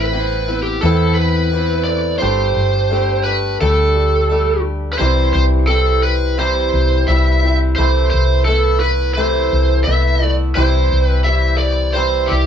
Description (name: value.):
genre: rock.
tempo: 86 BPM.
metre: 4/4.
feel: straight.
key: C major.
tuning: A4 = 438 Hz.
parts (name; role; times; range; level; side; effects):
lead guitar through a small cranked amp; melody; 0.0-12.5 s; G4 to E5; -18 LUFS; right 2 dB; overdrive.
picked old ladder-braced acoustic guitar; accompaniment; 0.0-12.5 s; A2 to G4; -21 LUFS; left 1 dB; none.
warm upright piano; accompaniment; 0.0-12.5 s; C4 to B5; -29 LUFS; right 8 dB; none.
hollow-body short-scale fingered electric bass; bass; 0.0-12.5 s; G1 to E2; -16 LUFS; left 1 dB; none.
room: light reverb.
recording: band playing live in one room, nothing above 7.7 kHz.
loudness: -13 LUFS.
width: side -8 dB against mid.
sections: 0.0-5.0 A section; 5.0-12.5 B section.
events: none.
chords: 0.0 Amadd9; 2.2 Gsus2; 5.0 C; 7.8 Amadd9/C; 10.6 C.